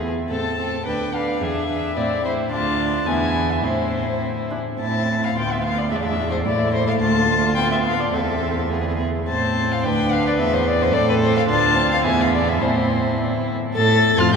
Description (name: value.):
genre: quick classical-period movement for string quartet.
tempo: 107 BPM.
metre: 2/4.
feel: rubato.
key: A minor.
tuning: A4 = 441 Hz.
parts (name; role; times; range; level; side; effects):
rich violin; second line; 0.0-14.4 s; D4 to C5; -25 LUFS; left 1 dB; none.
warm viola; accompaniment; 0.0-14.4 s; G#3 to A4; -25 LUFS; right 3 dB; none.
rich cello; bass; 0.0-14.4 s; D2 to A2; -23 LUFS; right 1 dB; none.
dark violin; melody; 0.3-14.4 s; B4 to A6; -22 LUFS; left 4 dB; none.
room: wet cathedral reverb, RT60 5.6 s.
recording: recorded in a church or concert hall.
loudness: -18 LUFS.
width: side -6 dB against mid.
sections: 0.0-4.8 A section; 4.8-13.8 B section.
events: none.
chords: 0.3 Am; 0.9 Bdim/D; 1.4 E7; 2.0 Am; 2.5 Dm; 3.1 E; 3.6 Am; 5.4 Bdim/D; 5.9 E7; 6.5 A5; 7.0 Dm; 7.6 Bdim/D; 8.1 Am/E; 8.7 E; 9.3 Am; 9.8 G7/D; 10.4 E5; 10.9 Am; 11.5 Dm; 12.1 E5; 12.6 Am; 13.8 F.